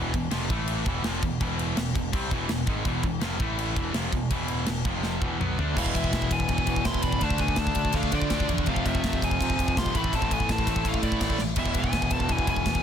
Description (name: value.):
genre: heavy metal.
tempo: 165 BPM.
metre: 4/4.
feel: straight.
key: E phrygian dominant.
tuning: A4 = 440 Hz.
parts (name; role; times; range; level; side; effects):
high-gain distorted guitar; riff; 0.0-12.8 s; E2 to D4; -32 LUFS; left 12 dB; distortion.
tight distorted guitar; riff; 0.0-12.8 s; E2 to D4; -32 LUFS; right 12 dB; distortion.
growling picked electric bass; bass; 0.0-12.8 s; E1 to D3; -31 LUFS; equal; overdrive.
tight metal drum kit; drums; 0.1-12.8 s; crash cymbal, kick drum, ride cymbal, snare drum, toms; -28 LUFS; equal; none.
biting overdriven guitar; riff; 5.7-12.8 s; E2 to D4; -34 LUFS; left 1 dB; none.
high-gain lead guitar; melody; 5.8-12.8 s; D5 to C6; -30 LUFS; left 2 dB; distortion.
high-gain lead guitar; second line; 5.8-12.8 s; F3 to F4; -38 LUFS; right 4 dB; none.
room: small room ambience.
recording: dense, heavily limited modern master.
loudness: -24 LUFS.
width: side -8 dB against mid.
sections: 0.0-5.8 A section; 5.8-12.8 B section.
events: drum fill 5.0-5.8, 11.4.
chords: 0.5 A5; 0.9 E; 3.4 A5; 3.8 E5; 4.9 F5; 5.2 E5; 5.8 E; 7.2 Dm; 8.7 F; 9.9 Am; 11.6 E.